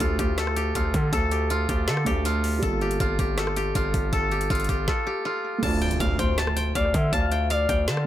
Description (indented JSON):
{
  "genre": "hip hop, trap",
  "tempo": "160 BPM",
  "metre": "4/4",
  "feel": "half-time",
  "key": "D minor",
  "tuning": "A4 = 440 Hz",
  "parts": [
    { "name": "steel-string zither", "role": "melody", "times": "0.0-8.1 s", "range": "F4 to A5", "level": "-27 LUFS", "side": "left 1 dB", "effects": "tape echo" },
    { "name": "dark concert grand piano", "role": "accompaniment", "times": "0.0-8.1 s", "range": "G3 to G4", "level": "-33 LUFS", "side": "right 4 dB", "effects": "tape echo" },
    { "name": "distorted 808-style bass", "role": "bass", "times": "0.0-8.1 s", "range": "G1 to D3", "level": "-26 LUFS", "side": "equal", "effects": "distortion" },
    { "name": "trap drum kit", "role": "drums", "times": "0.0-8.1 s", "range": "crash cymbal, hi-hat, kick drum, rim click, snare drum", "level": "-28 LUFS", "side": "equal", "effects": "none" },
    { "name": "impact", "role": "sound effects", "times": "5.6-7.1 s", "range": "none", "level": "-36 LUFS", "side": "equal", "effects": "none" },
    { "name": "gliding portamento lead", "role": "second line", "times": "6.2-7.9 s", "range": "C5 to F5", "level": "-27 LUFS", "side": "left 4 dB", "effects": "chorus, tape echo" }
  ],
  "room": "little or no reverb",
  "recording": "echo-heavy mix",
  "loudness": "-22 LUFS",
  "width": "side -12 dB against mid",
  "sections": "0.0-5.6 A section; 5.6-8.1 B section",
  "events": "stop 4.9-5.6; impact 5.6-7.1",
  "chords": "0.0 Dm; 2.6 Gm7; 5.6 Dm"
}